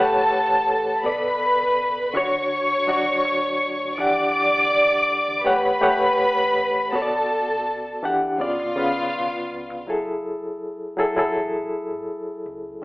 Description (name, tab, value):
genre	lush 1970s-style soul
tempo	82 BPM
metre	4/4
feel	straight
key	E dorian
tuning	A4 = 441 Hz
part	warm studio string section	second line	0.0-9.8 s	E#4 to D6	-20 LUFS	equal	none
part	reed electric piano	accompaniment	0.0-12.8 s	B2 to F#5	-23 LUFS	equal	fast tremolo
part	vintage muted fingered electric bass	bass	0.0-12.8 s	F#1 to E2	-46 LUFS	equal	none
room	wet large studio reverb, RT60 0.9 s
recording	band playing live in one room, telephone sound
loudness	-19 LUFS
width	side -20 dB against mid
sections	0.0-9.9 A section; 9.9-12.8 B section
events	none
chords	0.0 A13; 1.0 Bm7; 2.1 Dmaj7; 4.0 Em9; 5.5 A13; 6.9 Bm7; 8.0 Em9; 8.4 C#7b9; 9.9 F#m9